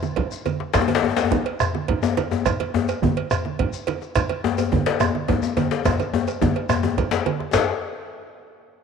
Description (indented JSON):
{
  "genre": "west african traditional, West African drum ensemble",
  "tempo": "141 BPM (dotted quarters)",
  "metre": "12/8",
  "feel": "straight",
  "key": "none",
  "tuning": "none",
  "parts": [
    { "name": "congas", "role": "percussion", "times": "0.0-7.7 s", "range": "none", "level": "-27 LUFS", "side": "right 7 dB", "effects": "none" },
    { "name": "djembe", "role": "percussion", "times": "0.0-7.7 s", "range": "none", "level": "-31 LUFS", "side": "left 4 dB", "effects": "none" },
    { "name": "shekere", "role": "percussion", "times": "0.0-7.7 s", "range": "none", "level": "-34 LUFS", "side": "left 5 dB", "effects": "none" },
    { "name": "bombo", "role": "percussion", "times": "0.2-7.7 s", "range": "none", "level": "-27 LUFS", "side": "right 4 dB", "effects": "none" },
    { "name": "cowbell", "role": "percussion", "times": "0.2-7.7 s", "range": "none", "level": "-30 LUFS", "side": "right 11 dB", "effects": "none" },
    { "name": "djembe", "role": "percussion", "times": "0.7-7.7 s", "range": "none", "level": "-22 LUFS", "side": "left 8 dB", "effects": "none" }
  ],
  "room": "moderate plate reverb, RT60 2.7 s",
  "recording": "1960s-style stereo with parts hard left and right",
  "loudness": "-20 LUFS",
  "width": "side -6 dB against mid",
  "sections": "0.0-7.5 A section; 7.5-8.8 B section",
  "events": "speeding up 0.0-8.8; drum fill 5.9-7.5",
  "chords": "none",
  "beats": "0.31 | 0.74 1.17 1.60 2.03 | 2.46 2.88 3.31 3.74 | 4.16 4.59 5.01 5.43 | 5.86 6.28 6.70 7.12 | 7.54"
}